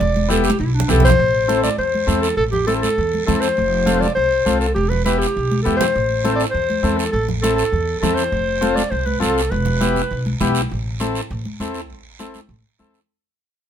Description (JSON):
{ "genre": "latin, cumbia", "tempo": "202 BPM", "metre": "4/4", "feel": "straight", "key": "A minor", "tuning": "A4 = 443 Hz", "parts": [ { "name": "warm clarinet", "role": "melody", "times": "0.0-10.4 s", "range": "D4 to D5", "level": "-19 LUFS", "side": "equal", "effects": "none" }, { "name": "upright bass", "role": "bass", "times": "0.0-13.0 s", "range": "E1 to E2", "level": "-22 LUFS", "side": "equal", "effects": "none" }, { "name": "congas", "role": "percussion", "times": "0.0-12.9 s", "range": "none", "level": "-25 LUFS", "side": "right 1 dB", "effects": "none" }, { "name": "guiro", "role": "percussion", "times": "0.0-13.1 s", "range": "none", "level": "-30 LUFS", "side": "right 6 dB", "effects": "none" }, { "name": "combo organ", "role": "accompaniment", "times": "0.3-13.0 s", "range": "B3 to A4", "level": "-22 LUFS", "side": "left 3 dB", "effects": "none" } ], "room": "moderate studio reverb, RT60 0.8 s", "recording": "minimal, uncompressed stereo recording", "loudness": "-16 LUFS", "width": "side -9 dB against mid", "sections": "0.0-1.2 A section; 1.2-10.7 B section; 10.7-13.1 C section", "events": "clarinet solo 0.0-1.2; drum fill 0.3-1.2, 5.5-6.0; fade-out 10.7-13.1", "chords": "0.0 Em; 1.2 Am; 3.6 F; 4.8 Em; 6.0 Am; 8.3 F; 9.5 Em; 10.7 Am", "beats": "| 0.01 0.30 0.60 0.90 | 1.19 1.49 1.79 2.09 | 2.38 2.68 2.98 3.27 | 3.57 3.87 4.17 4.46 | 4.76 5.06 5.36 5.65 | 5.95 6.25 6.54 6.84 | 7.14 7.44 7.73 8.03 | 8.33 8.62 8.92 9.22 | 9.52 9.81 10.11 10.41 | 10.71 11.00 11.30 11.60 | 11.89 12.19 12.49 12.79" }